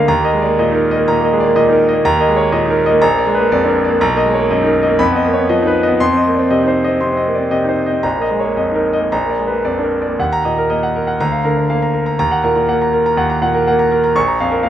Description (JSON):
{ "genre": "classical, virtuoso piano study", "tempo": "121 BPM", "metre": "4/4", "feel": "rubato", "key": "Eb minor", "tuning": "A4 = 440 Hz", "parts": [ { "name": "bright concert grand piano", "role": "solo", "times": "0.0-14.7 s", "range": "Bb1 to Db6", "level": "-12 LUFS", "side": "equal", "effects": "none" } ], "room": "light reverb", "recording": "minimal, uncompressed stereo recording", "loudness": "-12 LUFS", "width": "side -10 dB against mid", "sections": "0.0-10.2 A section; 10.2-14.7 B section", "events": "none", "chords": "0.1 Eb5; 3.0 Bb7; 4.0 Bmaj7; 5.0 Bmaj9#11/E#; 6.0 F5; 8.0 Bbsus4; 9.1 Bb; 10.2 Ebm; 11.2 Bb/D; 12.2 Ebm; 14.2 Bbm", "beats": "| 0.08 0.58 1.08 1.56 | 2.04 2.53 3.02 3.51 | 4.00 4.50 5.00 5.50 | 6.00 6.51 7.00 7.51 | 8.04 8.58 9.11 9.65 | 10.18 10.69 11.19 11.69 | 12.19 12.68 13.18 13.67 | 14.16 14.64" }